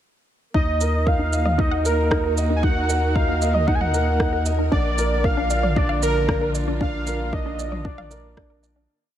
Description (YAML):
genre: piano and strings electronica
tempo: 115 BPM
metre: 4/4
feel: straight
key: Eb harmonic minor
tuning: A4 = 441 Hz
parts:
  - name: warm velvety synth lead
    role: melody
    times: 0.5-8.6 s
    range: Bb4 to Ab5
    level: -25 LUFS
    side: equal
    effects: chorus
  - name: dark studio string section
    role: sustained chords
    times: 0.5-8.9 s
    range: D3 to Bb4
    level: -30 LUFS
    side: right 1 dB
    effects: sidechain pumping
  - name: wide unison pluck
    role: arpeggios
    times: 0.5-8.8 s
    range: D4 to Gb5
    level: -30 LUFS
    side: equal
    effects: none
  - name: warm upright piano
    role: riff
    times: 0.5-8.9 s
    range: D4 to Eb5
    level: -27 LUFS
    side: right 1 dB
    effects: ping-pong delay
  - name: round analog bass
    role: bass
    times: 0.5-8.9 s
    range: Bb1 to Eb2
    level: -24 LUFS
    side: equal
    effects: sidechain pumping
  - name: electronic kick drum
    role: drums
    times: 0.5-8.5 s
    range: none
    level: -23 LUFS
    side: equal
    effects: none
  - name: organic electronic drum kit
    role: drums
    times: 0.8-8.7 s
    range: rim click, shaker, toms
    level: -29 LUFS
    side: right 1 dB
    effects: none
room: little or no reverb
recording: none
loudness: -19 LUFS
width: side -10 dB against mid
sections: 0.5-8.9 drop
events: drop 0.5-8.9; fade-out 6.1-8.9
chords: 0.5 Ebm; 4.7 Bb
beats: | 0.55 1.07 1.59 2.11 | 2.63 3.15 3.68 4.20 | 4.72 5.24 5.76 6.28 | 6.81 7.33 7.85 8.37